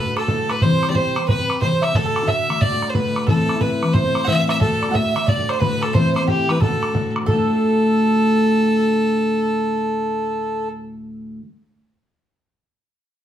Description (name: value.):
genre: celtic folk, Celtic hornpipe.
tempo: 181 BPM.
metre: 4/4.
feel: swing 64% on 8ths.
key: D mixolydian.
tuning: A4 = 440 Hz.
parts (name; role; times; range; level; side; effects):
clear fiddle; melody; 0.0-10.7 s; G4 to F#5; -23 LUFS; right 1 dB; none.
mandolin; second line; 0.0-11.4 s; G4 to F#5; -28 LUFS; right 4 dB; none.
mellow accordion; second line; 0.0-10.7 s; G4 to E5; -25 LUFS; equal; none.
picked steel-string acoustic guitar; accompaniment; 0.0-11.5 s; D2 to G4; -21 LUFS; left 1 dB; none.
bodhran; percussion; 0.2-7.5 s; none; -22 LUFS; equal; none.
room: wet studio reverb, RT60 0.7 s.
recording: heard from further back in the room.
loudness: -16 LUFS.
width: side -10 dB against mid.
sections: 0.0-7.3 A section; 7.3-9.9 B section.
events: none.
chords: 0.0 D; 0.6 C; 2.0 D; 3.3 Am; 4.6 D; 5.9 Am; 6.6 D.